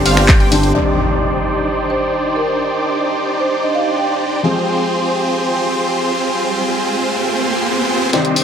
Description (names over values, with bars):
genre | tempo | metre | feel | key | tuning
EDM, festival progressive house | 130 BPM | 4/4 | straight | C minor | A4 = 440 Hz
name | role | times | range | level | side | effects
felt-muted upright piano | accompaniment | 0.0-8.4 s | G2 to D5 | -22 LUFS | left 3 dB | sidechain pumping, dub echo
wide unison pluck | arpeggios | 0.0-0.7 s | F5 to G5 | -26 LUFS | right 1 dB | none
big supersaw lead | riff | 0.0-8.4 s | C4 to G5 | -17 LUFS | right 1 dB | sidechain pumping, low-pass filter, dub echo
wide detuned saw bass | bass | 0.0-0.7, 8.1-8.4 s | G1 to C2 | -18 LUFS | equal | chorus, sidechain pumping, high-pass filter
house drum kit | drums | 0.1-0.7, 8.1-8.4 s | finger snaps, handclaps, hi-hat, ride cymbal, snare drum | -16 LUFS | left 1 dB | high-pass filter on hats, low-pass filter on hats, high-pass filter on cymbals, low-pass filter on cymbals, high-pass filter on snare, low-pass filter on snare, high-pass filter on room, low-pass filter on room
impact and riser | sound effects | 0.7-8.4 s | none | -23 LUFS | equal | none
marimba with medium mallets | melody | 1.9-4.3 s | Bb4 to G5 | -22 LUFS | right 2 dB | dub echo
room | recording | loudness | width
moderate digital room reverb, RT60 1.1 s | none | -14 LUFS | side -8 dB against mid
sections
0.7-8.1 A section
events
impact 0.7-2.6; filter sweep on supersaw synth 0.7-8.1; riser 5.7-8.1; drum fill 8.1-8.4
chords
0.0 Gsus4; 0.7 Cmadd9; 4.4 Fmadd9